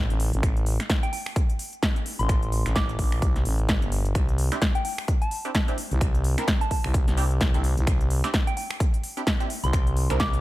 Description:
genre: bass house.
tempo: 129 BPM.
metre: 4/4.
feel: swing 58% on 16ths.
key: unclear.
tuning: A4 = 438 Hz.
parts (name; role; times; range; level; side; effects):
growling FM bass; bass; 0.0-10.4 s; G1 to C2; -24 LUFS; equal; overdrive, sidechain pumping.
big-room dance drum kit; drums; 0.1-10.4 s; finger snaps, hi-hat, snare drum; -30 LUFS; equal; none.
electronic kick drum; drums; 0.4-10.3 s; none; -24 LUFS; equal; none.
soft synth bell; melody; 1.0-10.4 s; G5 to D6; -34 LUFS; equal; chorus, phaser, tape echo.
band-passed chord stab; stabs; 4.5-10.2 s; C4 to Bb4; -33 LUFS; right 3 dB; phaser, sidechain pumping, tape echo.
room: little or no reverb.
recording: none.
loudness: -22 LUFS.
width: side -17 dB against mid.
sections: 0.0-10.4 A section.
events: none.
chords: none.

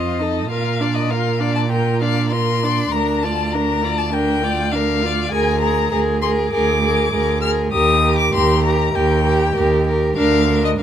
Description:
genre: quick classical-period movement for string quartet.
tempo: 100 BPM.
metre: 4/4.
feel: rubato.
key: Bb major.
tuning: A4 = 440 Hz.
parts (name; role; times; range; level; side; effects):
rich violin; melody; 0.0-10.8 s; Eb5 to F6; -22 LUFS; left 7 dB; none.
rich violin; second line; 0.0-10.8 s; A4 to D5; -23 LUFS; left 4 dB; none.
rich viola; accompaniment; 0.0-10.8 s; D4 to Ab4; -22 LUFS; right 2 dB; none.
rich cello; bass; 0.0-10.8 s; D2 to Bb2; -20 LUFS; right 4 dB; none.
room: light reverb.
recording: close, detailed microphones.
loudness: -15 LUFS.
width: side -9 dB against mid.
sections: 0.0-10.8 A section.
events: none.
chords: 0.5 Bb; 2.9 Bb/D; 5.3 Bb7/D; 7.7 Eb; 10.2 Bb/D.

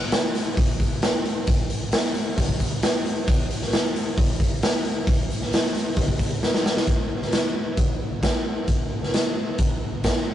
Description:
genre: rock.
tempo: 133 BPM.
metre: 4/4.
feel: straight.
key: none.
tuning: none.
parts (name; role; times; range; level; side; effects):
tambourine; percussion; 0.0-10.1 s; none; -45 LUFS; right 4 dB; none.
raw garage drum kit; drums; 0.1-10.2 s; hi-hat, kick drum, snare drum; -21 LUFS; equal; none.
room: light reverb.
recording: rough rehearsal-room recording, warm saturation, nothing above 10.7 kHz.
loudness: -21 LUFS.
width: side -11 dB against mid.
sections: 0.0-6.9 A section; 6.9-10.3 B section.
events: drum fill 6.4-6.9.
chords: none.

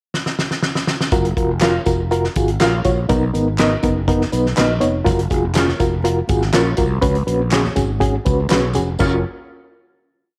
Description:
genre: uptempo 1960s-style soul.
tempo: 122 BPM.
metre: 4/4.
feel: straight.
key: F# major.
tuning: A4 = 440 Hz.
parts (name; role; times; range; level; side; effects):
natural country drum kit; drums; 0.1-9.1 s; crash cymbal, hi-hat, kick drum, snare drum; -23 LUFS; equal; none.
reed electric piano; accompaniment; 1.1-9.2 s; B3 to C#5; -22 LUFS; equal; fast tremolo.
fretless electric bass; bass; 1.1-9.2 s; E#1 to C#2; -23 LUFS; equal; none.
tambourine and handclaps; percussion; 1.1-9.2 s; none; -34 LUFS; equal; none.
electric guitar through a small old amp; stabs; 1.6-9.2 s; B3 to E#5; -24 LUFS; equal; vibrato effect.
congas; percussion; 5.0-9.2 s; none; -37 LUFS; equal; none.
room: light reverb.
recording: none.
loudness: -18 LUFS.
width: mono.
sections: 0.0-1.1 pickup bar; 1.1-9.0 verse; 9.0-10.4 final chord.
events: drum fill 0.1-1.1.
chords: 0.0 N.C.; 1.1 F#maj7; 3.1 Bmaj7; 5.1 F#maj7; 7.0 C#7sus4; 9.0 F#maj7.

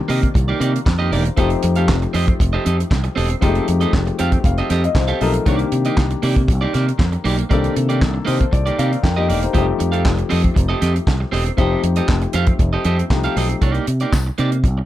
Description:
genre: disco.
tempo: 118 BPM.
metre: 4/4.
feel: straight.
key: C dorian.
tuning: A4 = 439 Hz.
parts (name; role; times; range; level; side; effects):
warm grand piano; accompaniment; 0.0-13.6 s; Eb3 to G5; -23 LUFS; left 7 dB; none.
electric guitar at the edge of break-up; accompaniment; 0.1-14.8 s; Bb3 to F5; -23 LUFS; right 5 dB; none.
fingered electric bass; bass; 0.1-14.8 s; E1 to C3; -19 LUFS; equal; none.
damped 70s drum kit; drums; 0.1-14.8 s; handclaps, hi-hat, kick drum, snare drum; -19 LUFS; equal; none.
tambourine; percussion; 14.1-14.3 s; none; -34 LUFS; left 10 dB; none.
room: little or no reverb.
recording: dark, warm production.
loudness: -15 LUFS.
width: side -13 dB against mid.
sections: 0.0-13.6 A section; 13.6-14.9 B section.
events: grand piano fill 3.9-5.5, 8.0-9.5, 12.9-13.6.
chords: 0.0 Cm9; 1.4 F9; 5.5 Cm9; 9.5 F9; 13.6 Cm9.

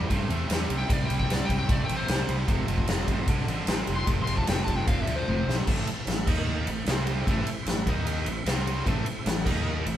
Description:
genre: blues rock power trio and southern rock.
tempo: 151 BPM.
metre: 4/4.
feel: straight.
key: unclear.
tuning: A4 = 442 Hz.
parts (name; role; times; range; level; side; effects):
overdriven slide guitar; melody; 0.0-5.5 s; C5 to C6; -33 LUFS; left 3 dB; none.
overdriven tonewheel organ; sustained chords; 0.0-10.0 s; G3 to D#5; -41 LUFS; right 2 dB; none.
distorted electric guitar; riff; 0.0-10.0 s; F2 to D#4; -32 LUFS; right 1 dB; overdrive.
fuzz fingered electric bass; bass; 0.0-10.0 s; F1 to G2; -30 LUFS; equal; overdrive.
huge arena drum kit; drums; 0.1-10.0 s; crash cymbal, kick drum, ride cymbal, snare drum, toms; -27 LUFS; equal; none.
room: moderate stone room reverb, RT60 1.0 s.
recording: band playing live in one room.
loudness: -24 LUFS.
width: side -11 dB against mid.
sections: 0.0-5.7 A section; 5.7-10.0 B section.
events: electric slide guitar solo 0.0-5.7; drum fill 5.3-5.7.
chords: 0.0 C; 2.5 F; 5.7 Am; 6.3 D#5; 6.7 Am; 6.9 C5; 7.3 Am; 7.9 D#5; 8.3 Am; 8.5 C5; 8.9 Am; 9.5 D#5.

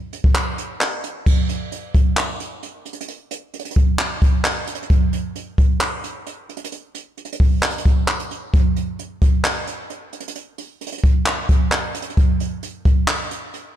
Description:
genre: hip hop.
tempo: 132 BPM.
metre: 4/4.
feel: half-time.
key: none.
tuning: none.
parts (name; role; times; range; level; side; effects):
jazz brush drum kit; drums; 0.1-13.6 s; crash cymbal, handclaps, hi-hat, kick drum; -18 LUFS; equal; vintage 12-bit sampler grit.
room: light reverb.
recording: none.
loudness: -17 LUFS.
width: side -11 dB against mid.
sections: 0.0-1.3 A section; 1.3-13.8 B section.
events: none.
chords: none.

